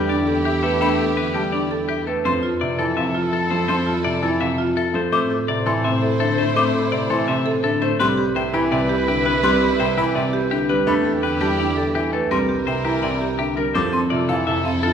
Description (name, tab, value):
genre	classical, minimalist pattern music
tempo	167 BPM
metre	4/4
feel	straight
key	unclear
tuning	A4 = 440 Hz
part	clean electric guitar	melody	0.0-14.9 s	G4 to E5	-26 LUFS	left 7 dB	none
part	mellow soprano saxophone	second line	0.0-14.9 s	G4 to C5	-29 LUFS	right 3 dB	none
part	bright baby grand piano	accompaniment	0.0-14.9 s	C3 to A3	-24 LUFS	left 1 dB	none
part	rich symphonic string section	sustained chords	0.0-14.9 s	E4 to C5	-29 LUFS	left 1 dB	none
part	marimba with medium hard mallets	arpeggios	0.0-14.9 s	C4 to C5	-22 LUFS	right 2 dB	none
part	clear studio double bass section	bass	0.0-14.9 s	C2 to A2	-28 LUFS	right 1 dB	none
part	mellow hollow concert flute	arpeggios	0.1-14.7 s	E5 to D6	-28 LUFS	left 3 dB	none
room	wet recital hall reverb, RT60 1.7 s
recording	recorded in a church or concert hall, lossy compression artefacts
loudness	-18 LUFS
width	side -8 dB against mid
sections	0.0-13.8 A section; 13.8-14.9 B section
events	none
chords	0.0 Em7; 2.3 Fmaj7; 5.1 Am; 8.0 Cmaj7; 10.9 Em7; 12.3 C7; 13.8 Fmaj7